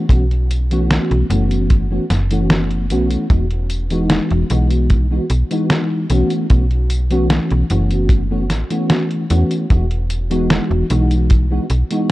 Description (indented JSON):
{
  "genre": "vaporwave",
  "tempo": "75 BPM",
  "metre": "4/4",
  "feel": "straight",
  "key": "E major",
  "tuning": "A4 = 439 Hz",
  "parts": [
    { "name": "mellow FM electric piano", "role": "accompaniment", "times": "0.0-12.1 s", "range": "E3 to F#4", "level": "-19 LUFS", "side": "equal", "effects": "ensemble chorus, vintage 12-bit sampler grit, tape echo" },
    { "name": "slap-like FM bass", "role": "bass", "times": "0.1-11.8 s", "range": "E1 to E2", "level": "-17 LUFS", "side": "equal", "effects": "none" },
    { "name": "detuned 8-bit digital drum machine", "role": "drums", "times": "0.1-12.1 s", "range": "hi-hat, snare drum, tambourine", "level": "-19 LUFS", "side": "equal", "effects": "none" },
    { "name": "kick drum", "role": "drums", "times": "0.1-11.5 s", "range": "none", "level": "-13 LUFS", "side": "equal", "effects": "none" }
  ],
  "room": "studio reverb",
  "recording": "dark, warm production, cassette tape",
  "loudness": "-14 LUFS",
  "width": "side -17 dB against mid",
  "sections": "0.0-12.1 A section",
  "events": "none",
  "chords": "0.0 B7sus4; 3.3 Emaj9; 6.1 B7sus4; 9.7 Emaj9"
}